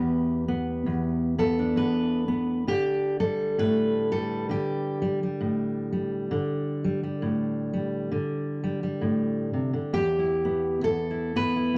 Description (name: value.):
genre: folk, solo fingerstyle acoustic guitar.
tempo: 66 BPM.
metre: 4/4.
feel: swing 58% on 8ths.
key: E minor.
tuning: A4 = 439 Hz.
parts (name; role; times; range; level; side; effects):
fingerpicked steel-string acoustic guitar; solo; 0.0-11.8 s; E2 to B4; -27 LUFS; equal; none.
room: light reverb.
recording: none.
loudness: -27 LUFS.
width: mono.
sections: 0.0-9.9 A section; 9.9-11.8 B section.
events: none.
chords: 0.0 Em7; 2.7 Dsus4; 9.9 Em.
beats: 0.86 1.77 | 2.68 3.59 4.49 5.40 | 6.31 7.21 8.12 9.03 | 9.93 10.84 11.74.